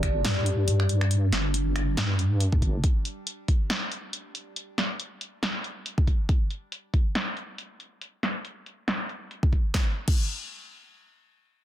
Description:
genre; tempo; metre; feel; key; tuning
deep dubstep; 139 BPM; 4/4; swing 56% on 16ths, half-time; unclear; A4 = 439 Hz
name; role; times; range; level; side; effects
overtone-sweeping drone; sustained chords; 0.0-6.3 s; G3 to D4; -33 LUFS; left 1 dB; chorus, built-in reverb, phaser
deep soft wobble bass; bass; 0.0-2.8 s; G1 to G2; -24 LUFS; equal; chorus
deep house drum kit; drums; 0.0-10.2 s; crash cymbal, finger snaps, hi-hat, snare drum; -30 LUFS; equal; low-pass filter on hats, low-pass filter on snare, low-pass filter on cymbals, low-pass filter on room
electronic kick drum; drums; 0.0-10.2 s; none; -23 LUFS; equal; none
room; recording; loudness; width
little or no reverb; dense, heavily limited modern master; -24 LUFS; side -12 dB against mid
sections
0.0-9.7 A section; 9.7-11.6 B section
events
filter sweep on drum 0.0-9.7; filter sweep on synth drone 0.0-6.3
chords
0.0 G5; 9.7 N.C.

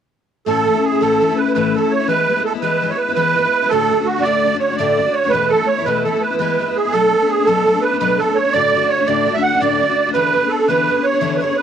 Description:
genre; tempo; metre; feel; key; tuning
celtic folk; 112 BPM (dotted quarters); 9/8; straight; A major; A4 = 440 Hz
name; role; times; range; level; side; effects
musette accordion; melody; 0.5-11.6 s; F#4 to F#5; -15 LUFS; right 4 dB; plate reverb
picked steel-string acoustic guitar; accompaniment; 0.5-11.6 s; D2 to G#4; -20 LUFS; left 9 dB; cassette tape, plate reverb
room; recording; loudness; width
wet booth ambience, RT60 0.2 s; home recording on cassette; -14 LUFS; side -8 dB against mid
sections
0.5-11.6 A section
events
none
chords
0.5 A; 2.1 E; 3.7 D; 5.3 Esus4; 6.4 E; 6.9 Bm7; 8.5 D; 10.1 E7

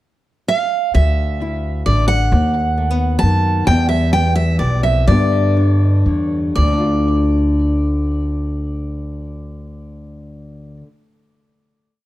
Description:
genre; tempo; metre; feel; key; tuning
acoustic folk duo or small band; 115-131 BPM; 3/4; straight; D dorian; A4 = 440 Hz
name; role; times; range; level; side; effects
picked steel-string acoustic guitar; melody; 0.5-10.8 s; D5 to A5; -20 LUFS; right 2 dB; plate reverb, tape echo
nylon-string guitar; accompaniment; 0.9-11.0 s; D2 to G4; -21 LUFS; left 2 dB; plate reverb
upright bass; bass; 0.9-10.8 s; A1 to G2; -17 LUFS; equal; none
room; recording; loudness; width
moderate studio reverb, RT60 0.7 s; dark, warm production; -14 LUFS; side -15 dB against mid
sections
0.0-0.9 pickup bar; 0.9-6.6 A section; 6.6-9.7 final chord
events
slowing down 3.7-6.6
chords
0.0 N.C.; 0.9 Dsus2; 2.3 B7/D#; 3.7 Em; 5.1 G; 6.6 Dm

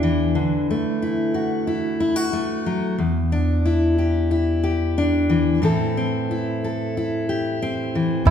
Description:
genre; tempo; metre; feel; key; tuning
acoustic folk duo or small band; 91 BPM; 4/4; straight; unclear; A4 = 440 Hz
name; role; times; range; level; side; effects
fingerpicked steel-string acoustic guitar; accompaniment; 0.0-8.3 s; E2 to A4; -19 LUFS; left 1 dB; none
bluegrass banjo; arpeggios; 8.3 s; E4; -18 LUFS; right 12 dB; none
upright bass; bass; 8.3 s; E2; -12 LUFS; right 1 dB; none
room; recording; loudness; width
wet recital hall reverb, RT60 1.5 s; recorded in a church or concert hall; -19 LUFS; side -8 dB against mid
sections
0.0-8.3 A section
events
none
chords
0.4 Dadd9; 3.0 Em7; 5.6 Am

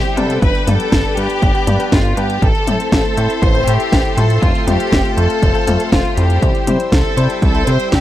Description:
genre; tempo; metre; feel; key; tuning
italo disco; 120 BPM; 4/4; straight; A minor; A4 = 439 Hz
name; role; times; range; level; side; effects
clear chamber violin section; melody; 0.0-8.0 s; F4 to C5; -19 LUFS; left 1 dB; tape echo
string machine, full ensemble; sustained chords; 0.0-8.0 s; A4 to E6; -25 LUFS; right 1 dB; ensemble chorus
barky tine electric piano; stabs; 0.0-8.0 s; G3 to C5; -23 LUFS; left 4 dB; overdrive, phaser
chorused synth bass; bass; 0.0-8.0 s; F1 to C3; -17 LUFS; equal; none
house drum kit; drums; 0.0-8.0 s; hi-hat, snare drum, toms; -19 LUFS; left 1 dB; overdrive
electronic kick drum; drums; 0.4-8.0 s; none; -17 LUFS; equal; overdrive
room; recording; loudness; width
digital ambience; dry, close 1970s-style studio recording; -12 LUFS; side -13 dB against mid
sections
0.0-8.0 A section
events
none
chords
0.4 G; 2.4 Am; 4.4 F; 6.4 C

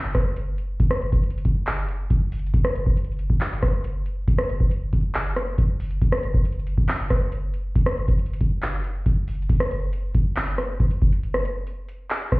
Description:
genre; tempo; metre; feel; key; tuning
hip hop; 138 BPM; 4/4; half-time; none; none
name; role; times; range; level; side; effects
booming analog drum machine; drums; 0.1-12.4 s; crash cymbal, handclaps, hi-hat, kick drum, rim click; -21 LUFS; equal; none
room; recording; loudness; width
light reverb, digital ambience; heard muffled through a wall, club reverb, vinyl crackle, EQ; -21 LUFS; side -23 dB against mid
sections
0.0-9.5 A section; 9.5-12.4 B section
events
none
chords
none

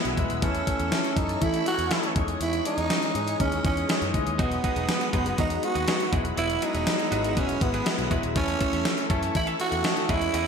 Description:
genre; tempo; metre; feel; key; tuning
1980s-style pop; 121 BPM; 4/4; straight; unclear; A4 = 440 Hz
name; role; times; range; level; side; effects
growling tenor saxophone; melody; 0.0-10.5 s; B3 to F#4; -28 LUFS; right 3 dB; shimmer reverb
clear concert grand piano; accompaniment; 0.0-10.5 s; E3 to D#5; -30 LUFS; left 4 dB; shimmer reverb
string machine, cellos; sustained chords; 0.0-10.5 s; G#4 to E6; -34 LUFS; equal; phaser, ensemble chorus, shimmer reverb
vintage muted picked electric bass; bass; 0.1-10.5 s; D#1 to E3; -32 LUFS; equal; none
gated 80s digital drum machine; drums; 0.1-10.5 s; hi-hat, kick drum, snare drum; -28 LUFS; equal; gated reverb, gated reverb snare, overdrive
twelve-string electric guitar; riff; 4.4-10.5 s; E3 to A4; -35 LUFS; right 4 dB; analog chorus, shimmer reverb, digital delay
room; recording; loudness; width
moderate plate reverb, RT60 1.1 s; bright 1980s-style digital production; -23 LUFS; side -6 dB against mid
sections
0.0-10.5 A section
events
none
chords
0.4 A/E; 2.2 C#madd9/E; 4.4 G#m7/E; 6.1 Eadd9; 8.4 A/E

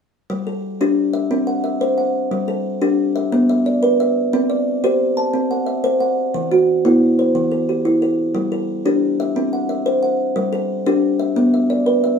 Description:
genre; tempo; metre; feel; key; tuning
southern african traditional; 119 BPM (dotted quarters); 12/8; straight; G major; A4 = 439 Hz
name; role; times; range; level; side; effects
kalimba; arpeggios; 0.3-12.2 s; E3 to A5; -16 LUFS; equal; none
room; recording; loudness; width
wet studio reverb, RT60 0.6 s; band playing live in one room; -16 LUFS; side -6 dB against mid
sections
0.3-12.2 A section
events
none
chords
0.3 G5; 1.3 C; 2.3 G5; 3.3 Bm; 4.3 C; 6.3 Em; 8.4 G5; 9.4 C; 10.4 G5; 11.4 Bm

